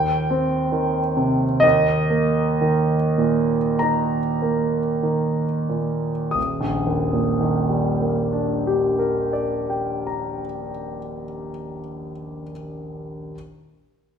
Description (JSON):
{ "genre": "classical, impressionist solo piano", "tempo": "41-71 BPM", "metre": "4/4", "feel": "rubato", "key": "Eb major", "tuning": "A4 = 439 Hz", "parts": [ { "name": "clear concert grand piano", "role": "solo", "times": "0.0-13.4 s", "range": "Eb1 to Eb6", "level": "-20 LUFS", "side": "right 1 dB", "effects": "none" } ], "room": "wet stone room reverb, RT60 1.4 s", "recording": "minimal, uncompressed stereo recording", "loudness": "-19 LUFS", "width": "side -7 dB against mid", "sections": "0.0-6.4 A section; 6.4-11.0 B section", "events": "slowing down 0.0-6.4", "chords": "0.0 Cm/Eb; 1.6 Eb5; 6.4 Ebmaj7" }